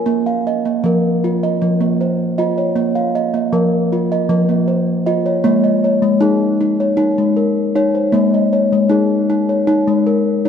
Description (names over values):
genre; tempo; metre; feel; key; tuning
world meditative, meditative tuned percussion; 156 BPM (eighths); 7/8; straight; Bb minor; A4 = 440 Hz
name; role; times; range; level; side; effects
steel tongue drum; solo; 0.0-10.5 s; F3 to Ab5; -13 LUFS; equal; none
room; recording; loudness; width
wet church reverb, RT60 3.0 s; none; -13 LUFS; side -8 dB against mid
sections
0.1-10.5 A section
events
none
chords
0.1 Bbm; 5.4 Ab5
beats
| 0.07 0.46 0.84 1.22 1.61 1.99 2.38 | 2.76 3.14 3.53 3.91 4.29 4.68 5.06 | 5.45 5.83 6.21 6.60 6.98 7.36 7.75 | 8.13 8.52 8.90 9.29 9.67 10.05 10.44